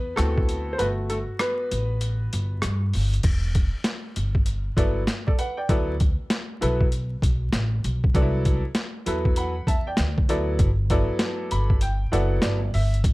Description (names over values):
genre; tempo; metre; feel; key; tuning
hip hop, jazz-hop; 98 BPM; 4/4; swing 63% on 16ths; unclear; A4 = 440 Hz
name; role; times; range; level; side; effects
clear upright piano; accompaniment; 0.0-13.0 s; F#3 to B5; -27 LUFS; equal; plate reverb
upright bass; bass; 0.0-13.1 s; E1 to G2; -24 LUFS; equal; none
boom bap sampler-style drum kit; drums; 0.2-13.1 s; crash cymbal, hi-hat, kick drum, rim click, snare drum; -24 LUFS; equal; overdrive
room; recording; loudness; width
little or no reverb; vinyl crackle; -21 LUFS; side -21 dB against mid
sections
0.0-3.2 A section; 3.2-13.0 A section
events
upright piano solo 0.0-3.2; kick muted 0.8-3.2, 11.8-13.0; upright piano fill 11.2-13.0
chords
0.2 D13; 0.8 Gmaj7; 3.2 Em9; 5.7 D69; 8.1 C6; 10.0 D69; 10.6 Gmaj7